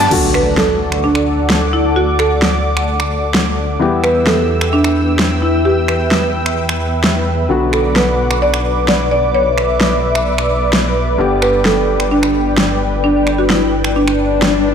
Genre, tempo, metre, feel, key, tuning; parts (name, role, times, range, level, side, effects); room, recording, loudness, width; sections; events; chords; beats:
EDM, festival progressive house; 130 BPM; 4/4; straight; D major; A4 = 438 Hz
lush unison pad; sustained chords; 0.0-14.7 s; A4 to E6; -19 LUFS; equal; chorus, phaser
wide detuned saw bass; bass; 0.0-14.7 s; G1 to E2; -19 LUFS; equal; chorus
big-room dance drum kit; drums; 0.0-14.5 s; cabasa, crash cymbal, finger snaps, hi-hat, snare drum; -18 LUFS; equal; overdrive, small room ambience
felt-muted upright piano; accompaniment; 0.1-14.7 s; G2 to G4; -22 LUFS; left 3 dB; vintage 12-bit sampler grit
impact and swell; sound effects; 0.1-2.0, 14.1-14.7 s; -20 LUFS; left 4 dB
buzzing marimba with hard mallets; melody; 0.3-14.4 s; D4 to D5; -16 LUFS; right 1 dB; tape echo
moderate lush hall reverb, RT60 1.9 s; -12 LUFS; side -7 dB against mid
0.1-14.7 A section
impact 0.1-2.0; swell 14.1-14.7
0.1 D; 3.8 Em; 7.5 Bm; 11.2 G
| 0.11 0.58 1.04 1.50 | 1.96 2.42 2.88 3.35 | 3.81 4.27 4.73 5.19 | 5.65 6.11 6.58 7.04 | 7.50 7.96 8.42 8.88 | 9.35 9.81 10.27 10.73 | 11.19 11.65 12.11 12.58 | 13.04 13.50 13.96 14.42